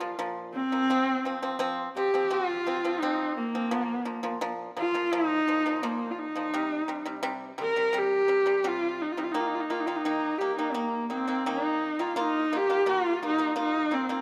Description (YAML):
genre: mongolian traditional, Mongolian folk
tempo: 85 BPM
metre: 4/4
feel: straight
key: Bb zhi mode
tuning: A4 = 440 Hz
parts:
  - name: clear horsehead fiddle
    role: melody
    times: 0.0-14.2 s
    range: Bb3 to Bb4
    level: -29 LUFS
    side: equal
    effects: none
  - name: pipa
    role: arpeggios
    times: 0.0-14.2 s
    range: Bb2 to F4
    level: -34 LUFS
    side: equal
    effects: none
room: moderate concert hall reverb, RT60 2.4 s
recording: close, detailed microphones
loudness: -28 LUFS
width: mono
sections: 0.0-12.2 A section; 12.2-14.2 B section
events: none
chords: 0.0 Bb5; 0.9 F5; 3.7 Bb5; 6.5 C5; 9.3 Eb5; 12.2 Bb5